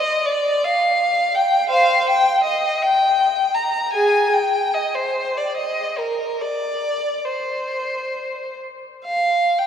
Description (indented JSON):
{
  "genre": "classical, free, expressive piece for unaccompanied violin",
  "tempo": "53-86 BPM",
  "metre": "3/4",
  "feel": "rubato",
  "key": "unclear",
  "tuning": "A4 = 440 Hz",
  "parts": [
    { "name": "rich violin", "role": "solo", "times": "0.0-9.7 s", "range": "Ab4 to Bb5", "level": "-17 LUFS", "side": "equal", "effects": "none" }
  ],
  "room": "wet cathedral reverb, RT60 4.6 s",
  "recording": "recorded in a church or concert hall",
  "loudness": "-17 LUFS",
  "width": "side -8 dB against mid",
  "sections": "0.0-9.1 A section",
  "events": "none",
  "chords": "none"
}